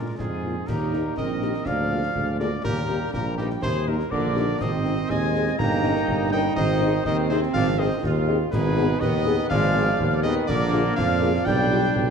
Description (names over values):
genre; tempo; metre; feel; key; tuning
military-style march for wind band; 122 BPM; 2/4; straight; Eb major; A4 = 440 Hz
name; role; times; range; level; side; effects
warm cornet; melody; 0.0-12.1 s; G4 to Bb5; -30 LUFS; right 1 dB; none
clear woodwind section; second line; 0.0-12.1 s; Eb4 to G5; -32 LUFS; left 2 dB; none
dark French horn section; accompaniment; 0.0-11.8 s; G3 to Bb4; -30 LUFS; left 5 dB; none
clear trombone section; sustained chords; 0.0-12.1 s; F3 to F4; -30 LUFS; right 4 dB; none
mellow tuba; bass; 0.0-12.1 s; G1 to Bb2; -25 LUFS; right 1 dB; none
clear euphonium; second line; 0.2-12.1 s; G2 to Bb3; -30 LUFS; right 3 dB; none
mellow hollow wooden piccolo; second line; 0.2-12.1 s; G5 to Bb6; -32 LUFS; left 3 dB; none
concert snare drum, concert bass drum and clash cymbals; drums; 0.2-12.1 s; none; -32 LUFS; left 1 dB; none
room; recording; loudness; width
wet large studio reverb, RT60 1.5 s; dark, warm production; -20 LUFS; side -6 dB against mid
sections
0.7-12.1 A section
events
none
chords
0.0 Bb; 0.7 Eb; 1.7 Bb7/D; 2.6 Eb; 4.6 Ab; 5.6 Eb7/G; 6.6 Ab; 8.5 Abm; 10.5 Bb7; 11.5 G7/B